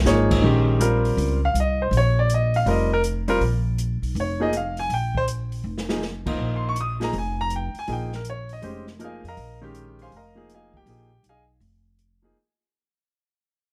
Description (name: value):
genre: modal jazz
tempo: 161 BPM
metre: 4/4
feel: swing 65% on 8ths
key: Bb dorian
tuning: A4 = 440 Hz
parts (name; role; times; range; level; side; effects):
- upright bass; bass; 0.0-12.3 s; F1 to F2; -26 LUFS; equal; none
- clear concert grand piano; accompaniment; 0.1-12.4 s; Eb3 to Eb6; -26 LUFS; equal; none
- open jazz drum kit; drums; 0.1-12.1 s; crash cymbal, hi-hat, kick drum, snare drum; -33 LUFS; equal; none
room: little or no reverb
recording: none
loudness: -23 LUFS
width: mono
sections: 0.4-12.4 A section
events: fade-out 0.4-12.4; drum fill 5.6-6.0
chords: 0.4 Bbm11